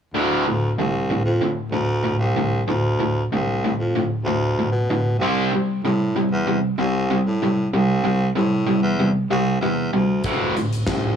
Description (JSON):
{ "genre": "classic rock", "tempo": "95 BPM", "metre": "4/4", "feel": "straight", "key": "unclear", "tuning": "A4 = 439 Hz", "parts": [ { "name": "overdriven electric guitar", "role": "riff", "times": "0.1-11.2 s", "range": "D2 to C4", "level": "-20 LUFS", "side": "equal", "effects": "none" }, { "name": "breathy baritone saxophone", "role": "bass", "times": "0.1-11.2 s", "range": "C2 to B2", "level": "-23 LUFS", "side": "equal", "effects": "none" }, { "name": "huge arena drum kit", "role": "drums", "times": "10.2-11.0 s", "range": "hi-hat, kick drum, snare drum", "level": "-26 LUFS", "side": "left 1 dB", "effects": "none" } ], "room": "light reverb, studio reverb", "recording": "none", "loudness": "-18 LUFS", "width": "side -8 dB against mid", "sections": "0.1-11.2 A section", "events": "none", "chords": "0.1 D7(no3); 5.2 C; 10.2 D7(no3)", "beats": "| 0.15 0.78 1.41 2.04 | 2.67 3.31 3.94 4.57 | 5.20 5.83 6.46 7.09 | 7.72 8.35 8.98 9.61 | 10.24 10.87" }